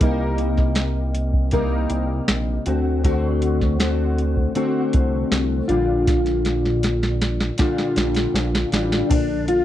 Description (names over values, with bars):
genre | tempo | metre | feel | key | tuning
indie pop, bedroom pop | 79 BPM | 4/4 | straight | Bb major | A4 = 444 Hz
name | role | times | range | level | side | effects
fingerpicked plugged-in steel-string acoustic guitar | accompaniment | 0.0-9.6 s | Bb2 to Bb4 | -21 LUFS | left 2 dB | ensemble chorus, vibrato effect
chorused synth bass | bass | 0.0-9.6 s | A1 to D2 | -23 LUFS | equal | none
soft vintage rhythm box | drums | 0.0-9.6 s | crash cymbal, hi-hat, kick drum, snare drum | -21 LUFS | equal | none
room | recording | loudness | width
light reverb | dry, close 1970s-style studio recording | -18 LUFS | side -12 dB against mid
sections
0.0-9.1 A section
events
drum fill 6.1-9.1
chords
0.0 Cm7; 2.7 D7; 5.7 Bb6; 9.1 Bb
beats
| 0.01 0.77 1.53 2.29 | 3.04 3.80 4.56 5.32 | 6.08 6.83 7.59 8.35 | 9.11